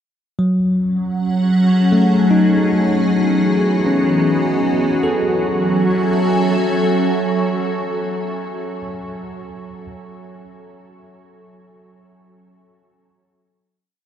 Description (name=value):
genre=ambient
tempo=78 BPM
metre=3/4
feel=straight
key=F# dorian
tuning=A4 = 438 Hz
part: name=evolving wavetable pad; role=sustained chords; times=0.9-8.1 s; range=E3 to G#5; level=-18 LUFS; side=equal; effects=ensemble chorus, built-in reverb, phaser
part: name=bell-like tine electric piano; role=arpeggios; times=0.4-9.9 s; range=F#3 to A4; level=-19 LUFS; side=equal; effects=tape echo
part: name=organ-like drone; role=drone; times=2.0-8.2 s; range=F#3 to F#4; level=-24 LUFS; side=right 1 dB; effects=ensemble chorus, built-in reverb
room=wet huge ambient reverb, RT60 7.5 s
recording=dark, warm production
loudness=-14 LUFS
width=side -9 dB against mid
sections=0.4-5.0 A section; 5.0-7.3 final chord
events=fade-in on synth drone 0.4-5.0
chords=0.4 F#m; 2.7 Emaj7; 5.0 F#m7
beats=| 0.40 1.17 1.94 | 2.71 3.48 4.26 | 5.04 5.80 6.57